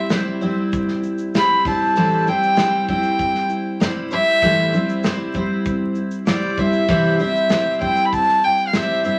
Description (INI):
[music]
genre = acoustic pop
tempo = 97 BPM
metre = 4/4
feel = straight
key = unclear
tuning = A4 = 440 Hz
[part]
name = warm violin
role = melody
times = 0.0-9.2 s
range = D5 to B5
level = -21 LUFS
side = equal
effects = none
[part]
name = picked twelve-string acoustic guitar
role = accompaniment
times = 0.0-9.2 s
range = A2 to C5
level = -23 LUFS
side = equal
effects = none
[part]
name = nylon-string guitar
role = arpeggios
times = 0.0-9.2 s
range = G3 to E4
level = -33 LUFS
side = equal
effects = none
[part]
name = modern studio drum kit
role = drums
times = 0.1-9.2 s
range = kick drum, shaker, snare drum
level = -26 LUFS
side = equal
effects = none
[sound]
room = wet studio reverb, RT60 0.6 s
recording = vinyl crackle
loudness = -19 LUFS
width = mono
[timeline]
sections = 0.0-9.2 A section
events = none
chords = 0.0 C; 1.7 Am7; 6.9 C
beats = 0.12 0.73 1.35 | 1.96 2.58 3.20 3.81 | 4.43 5.04 5.66 6.28 | 6.89 7.51 8.12 8.74